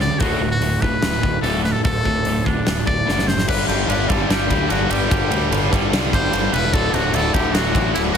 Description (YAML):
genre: hard rock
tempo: 148 BPM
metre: 4/4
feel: straight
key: unclear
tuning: A4 = 440 Hz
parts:
  - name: trumpet with metal mute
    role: melody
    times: 0.0-8.2 s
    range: D4 to D5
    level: -24 LUFS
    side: left 1 dB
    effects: none
  - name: distorted electric guitar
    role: riff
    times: 0.0-8.2 s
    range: D2 to G3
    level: -25 LUFS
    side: left 10 dB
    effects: overdrive
  - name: scooped high-gain guitar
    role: riff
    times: 0.0-8.2 s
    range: D2 to G3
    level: -25 LUFS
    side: right 10 dB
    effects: distortion
  - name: fuzz fingered electric bass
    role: bass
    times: 0.0-8.2 s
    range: D1 to D2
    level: -24 LUFS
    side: equal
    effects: overdrive
  - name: huge arena drum kit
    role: drums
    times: 0.0-8.2 s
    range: crash cymbal, hi-hat, kick drum, ride cymbal, snare drum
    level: -21 LUFS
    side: equal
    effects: none
  - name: overdriven electric guitar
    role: riff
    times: 3.5-8.2 s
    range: D2 to G3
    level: -26 LUFS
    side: equal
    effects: none
room: little or no reverb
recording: heavily compressed radio sound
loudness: -16 LUFS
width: side -7 dB against mid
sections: 0.0-3.5 A section; 3.5-8.2 B section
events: drum fill 3.1-3.5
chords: 0.2 D; 3.5 G5; 6.7 D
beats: | 0.20 0.62 1.03 1.44 | 1.85 2.26 2.67 3.07 | 3.48 3.89 4.29 4.70 | 5.11 5.51 5.92 6.32 | 6.73 7.13 7.54 7.94